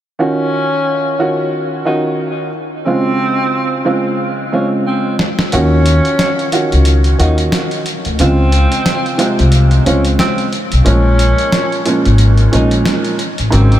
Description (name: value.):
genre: hip hop, boom-bap hip-hop.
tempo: 90 BPM.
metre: 4/4.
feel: swing 59% on 16ths.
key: Eb dorian.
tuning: A4 = 440 Hz.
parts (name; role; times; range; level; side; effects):
breathy tenor saxophone; melody; 0.2-13.8 s; C4 to Eb4; -18 LUFS; left 1 dB; high-pass filter, low-pass filter, ping-pong delay.
warm upright piano; accompaniment; 0.2-13.8 s; Ab2 to Gb4; -16 LUFS; right 2 dB; high-pass filter, low-pass filter.
dusty soul sampler-style drum kit; drums; 5.2-13.8 s; hi-hat, snare drum; -19 LUFS; equal; none.
upright bass; bass; 5.5-13.8 s; Ab1 to Eb2; -10 LUFS; equal; none.
room: moderate huge ambient reverb, RT60 6.4 s.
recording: dreamy mix soaked in reverb.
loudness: -11 LUFS.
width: side -12 dB against mid.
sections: 0.2-5.5 A section; 5.5-13.8 B section.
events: drum fill 4.2-5.5; kick muted 5.5-13.8.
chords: 0.2 Ebm9; 2.9 Dbmaj7; 5.5 Ebm9; 8.2 Dbmaj7; 10.9 Bbm7.